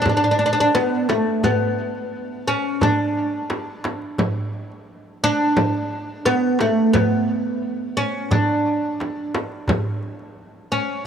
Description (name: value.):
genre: Arabic maqam ensemble.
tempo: 87 BPM.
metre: 4/4.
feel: straight.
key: unclear.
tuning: A4 = 444 Hz.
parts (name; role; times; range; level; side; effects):
oud; melody; 0.0-11.1 s; A3 to D4; -20 LUFS; equal; analog delay.
darbuka; percussion; 0.1-10.3 s; none; -27 LUFS; equal; none.
frame drum; percussion; 0.1-9.9 s; none; -26 LUFS; right 2 dB; none.
room: wet plate reverb, RT60 3.4 s.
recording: dreamy mix soaked in reverb.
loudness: -19 LUFS.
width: side -8 dB against mid.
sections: 0.0-11.1 A section.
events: none.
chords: none.